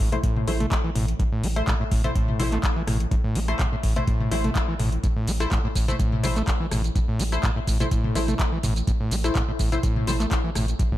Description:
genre	acid house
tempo	125 BPM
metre	4/4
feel	swing 54% on 16ths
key	A minor pentatonic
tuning	A4 = 441 Hz
part	overdriven acid bass	riff	0.0-11.0 s	A2 to C4	-28 LUFS	equal	distortion, sidechain pumping, ping-pong delay
part	saturated sub bass	bass	0.0-10.7 s	A1	-26 LUFS	equal	tube saturation, sidechain pumping
part	booming analog drum machine	drums	0.0-10.9 s	handclaps, hi-hat, rim click, shaker, toms	-30 LUFS	left 1 dB	none
part	filtered dub chord stab	stabs	0.1-10.2 s	A3 to C5	-30 LUFS	left 3 dB	lush chorus, ping-pong delay
part	electronic kick drum	drums	0.2-11.0 s	none	-24 LUFS	equal	none
room	light reverb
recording	none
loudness	-21 LUFS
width	side -14 dB against mid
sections	0.0-11.0 A section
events	none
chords	0.0 Am

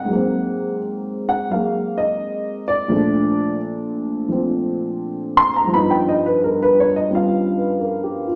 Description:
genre	solo jazz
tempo	86 BPM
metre	4/4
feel	swing 67% on 8ths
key	unclear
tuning	A4 = 437 Hz
part	dark upright piano	solo	0.0-8.4 s	G2 to C6	-20 LUFS	equal	none
room	wet large studio reverb, RT60 1.4 s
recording	nothing above 10.8 kHz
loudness	-20 LUFS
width	mono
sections	0.0-8.4 A section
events	upright piano solo 0.0-8.4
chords	0.1 Ab9; 2.9 Bbmaj7; 5.7 Gaug7

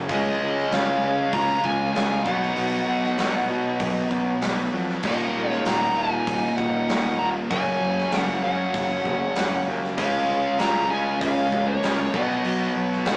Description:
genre	hard rock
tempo	97 BPM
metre	4/4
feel	straight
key	unclear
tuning	A4 = 440 Hz
part	overdriven tonewheel organ	sustained chords	0.0-13.2 s	none	barely audible	none	none
part	cranked stack guitar	riff	0.0-13.2 s	Eb2 to Db4	-36 LUFS	equal	none
part	cranked stack guitar	riff	0.0-13.2 s	Eb2 to Db4	-30 LUFS	equal	overdrive
part	distorted electric guitar	riff	0.0-13.2 s	Eb2 to Db4	-36 LUFS	equal	none
part	smooth overdriven lead guitar	melody	0.1-13.2 s	Db5 to Bb5	-29 LUFS	equal	none
part	octave-fuzz lead guitar	second line	0.1-13.2 s	Ab3 to Gb4	-34 LUFS	equal	distortion
part	fuzz picked electric bass	bass	0.1-13.2 s	Eb1 to B2	-32 LUFS	equal	overdrive
part	huge arena drum kit	drums	0.1-13.2 s	crash cymbal, hi-hat, kick drum, snare drum	-32 LUFS	equal	none
room	moderate small room reverb, RT60 0.6 s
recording	rough rehearsal-room recording, small speaker sound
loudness	-24 LUFS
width	mono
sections	0.0-13.2 A section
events	none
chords	0.1 Db; 2.3 B; 5.0 Ebm; 7.5 Gb5; 10.0 Db; 12.2 B

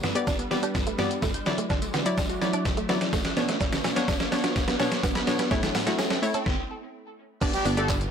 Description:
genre	dance-pop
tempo	126 BPM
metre	4/4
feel	straight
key	D major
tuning	A4 = 436 Hz
part	hollow square pluck	accompaniment	0.0-8.1 s	F#3 to D5	-29 LUFS	left 1 dB	chorus, sidechain pumping
part	lush unison pad	sustained chords	0.0-8.1 s	D3 to D5	-36 LUFS	equal	none
part	wide unison pluck	arpeggios	0.0-6.4 s	G2 to G6	-36 LUFS	right 2 dB	sidechain pumping, dub echo
part	direct-recorded clean electric guitar	riff	0.0-8.0 s	A3 to D4	-32 LUFS	right 5 dB	ensemble chorus
part	detuned 8-bit digital drum machine	drums	0.0-8.1 s	crash cymbal, handclaps, hi-hat, kick drum, shaker, snare drum	-27 LUFS	equal	none
part	tambourine	percussion	0.0-8.0 s	none	-44 LUFS	left 4 dB	none
part	riser and downlifter	sound effects	0.0-8.1 s	none	-35 LUFS	equal	none
part	mellow horn section	melody	7.5-7.9 s	G3 to A4	-29 LUFS	right 1 dB	none
part	fingered electric bass	bass	7.7-8.1 s	G1	-28 LUFS	equal	sidechain pumping
room	light reverb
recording	blown-out, overdriven recording, overdrive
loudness	-23 LUFS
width	side -7 dB against mid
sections	0.0-7.4 A section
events	build-up 0.0-7.4; drum fill 0.0-6.5; riser 0.0-7.4; stop 6.5-7.4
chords	0.0 G; 1.5 Dadd9; 3.4 Bmadd9; 5.5 A; 7.4 G

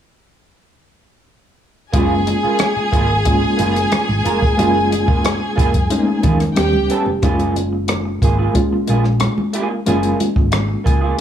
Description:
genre	lush 1970s-style soul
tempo	91 BPM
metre	4/4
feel	straight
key	F# major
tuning	A4 = 440 Hz
part	clear studio violin section	second line	1.9-6.9 s	G4 to G#5	-20 LUFS	left 1 dB	none
part	reed electric piano	accompaniment	1.9-11.2 s	G3 to G4	-19 LUFS	left 1 dB	fast tremolo
part	electric guitar through a small old amp	riff	1.9-11.2 s	A#3 to A#4	-23 LUFS	right 6 dB	analog chorus
part	hollow-body short-scale fingered electric bass	bass	1.9-11.1 s	E#1 to F#2	-20 LUFS	equal	none
part	compact cocktail drum kit	drums	1.9-11.2 s	hi-hat, kick drum, rim click	-20 LUFS	equal	none
part	congas	percussion	1.9-10.7 s	none	-25 LUFS	right 2 dB	none
room	light reverb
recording	small room ambience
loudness	-14 LUFS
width	side -9 dB against mid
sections	1.9-7.2 A section; 7.2-11.2 B section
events	none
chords	1.9 F#maj9; 6.6 D#aug7; 7.2 F#maj9

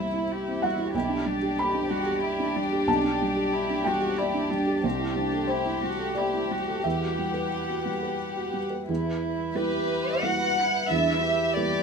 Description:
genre	neoclassical piano and strings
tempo	90 BPM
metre	3/4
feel	uneven beats, rubato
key	E minor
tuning	A4 = 440 Hz
part	warm chamber violin section	melody	0.0-11.8 s	E4 to F#5	-28 LUFS	left 1 dB	none
part	warm cello	second line	0.0-11.8 s	C4 to G4	-32 LUFS	right 1 dB	none
part	felt-muted upright piano	accompaniment	0.0-11.8 s	B1 to B5	-28 LUFS	right 2 dB	none
part	warm chamber string section	sustained chords	0.0-11.8 s	G3 to F#5	-37 LUFS	left 5 dB	none
room	light reverb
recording	minimal, uncompressed stereo recording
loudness	-24 LUFS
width	side -5 dB against mid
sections	0.0-8.9 A section; 8.9-11.8 A section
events	none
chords	0.0 C; 0.9 G/B; 4.8 Am7/C; 6.8 Emadd9; 8.9 Em7

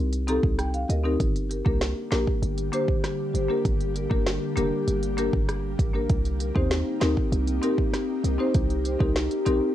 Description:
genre	dancehall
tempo	98 BPM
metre	4/4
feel	straight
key	G minor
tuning	A4 = 440 Hz
part	warm 808-style bass	bass	0.0-9.6 s	F1 to Eb2	-27 LUFS	equal	none
part	afro-pop drum kit	drums	0.1-9.6 s	hi-hat, kick drum, rim click, snare drum	-26 LUFS	equal	cassette tape
part	marimba with medium hard mallets	accompaniment	0.3-9.6 s	Bb3 to Bb5	-28 LUFS	left 1 dB	sidechain pumping, cassette tape
part	ethereal airy pad	sustained chords	2.0-9.7 s	D3 to G4	-30 LUFS	left 1 dB	ensemble chorus, built-in reverb, sidechain pumping, cassette tape
room	moderate studio reverb, RT60 0.6 s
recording	home recording on cassette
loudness	-22 LUFS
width	side -12 dB against mid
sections	0.0-9.7 A section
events	marimba fill 0.0-1.2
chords	0.0 Cm7; 1.2 Gm; 6.1 Cm7

